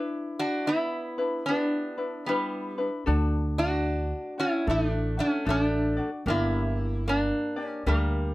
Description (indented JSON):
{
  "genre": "Hawaiian",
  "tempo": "75 BPM",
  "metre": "4/4",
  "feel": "swing 63% on 8ths",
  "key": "unclear",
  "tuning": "A4 = 444 Hz",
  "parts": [
    { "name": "ukulele", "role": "accompaniment", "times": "0.0-8.3 s", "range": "D4 to D5", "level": "-32 LUFS", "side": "left 2 dB", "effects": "none" },
    { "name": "metal-body resonator slide guitar", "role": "melody", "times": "0.4-8.3 s", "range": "G3 to F#4", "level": "-27 LUFS", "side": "equal", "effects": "none" },
    { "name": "upright bass", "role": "bass", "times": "3.1-8.3 s", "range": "G1 to D2", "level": "-27 LUFS", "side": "equal", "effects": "none" }
  ],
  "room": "light reverb",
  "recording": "none",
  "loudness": "-25 LUFS",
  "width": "side -18 dB against mid",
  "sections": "0.0-8.3 A section",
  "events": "none",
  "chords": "0.0 G6; 3.1 D; 6.3 Gm",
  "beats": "0.67 1.47 2.27 | 3.06 3.86 4.66 5.46 | 6.26 7.05 7.85"
}